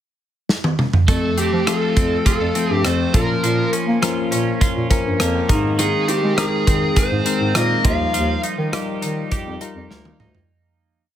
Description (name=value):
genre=1980s-style pop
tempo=102 BPM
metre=4/4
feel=straight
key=unclear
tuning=A4 = 436 Hz
part: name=modern studio drum kit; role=drums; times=0.5-10.5 s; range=hi-hat, kick drum, rim click, snare drum, toms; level=-20 LUFS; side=equal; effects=none
part: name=smooth overdriven lead guitar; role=melody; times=1.1-8.4 s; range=G4 to F5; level=-22 LUFS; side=equal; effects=none
part: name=tine electric piano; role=accompaniment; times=1.1-10.5 s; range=F3 to A5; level=-23 LUFS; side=left 6 dB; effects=phaser
part: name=twelve-string electric guitar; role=riff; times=1.1-11.1 s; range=Eb3 to Ab4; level=-25 LUFS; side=right 6 dB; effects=lush chorus
part: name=dark bass clarinet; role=bass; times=1.1-10.4 s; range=D2 to Bb3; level=-22 LUFS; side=equal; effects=none
room=light reverb, studio reverb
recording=none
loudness=-16 LUFS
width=side -10 dB against mid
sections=0.0-1.1 pickup bar; 1.1-10.5 verse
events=drum fill 0.5-1.1, 9.9-10.5; tine electric piano fill 4.9-5.8; fade-out 8.1-10.5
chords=0.0 N.C.; 1.1 F; 3.1 Bbm; 5.5 Abadd9; 7.8 Ebadd9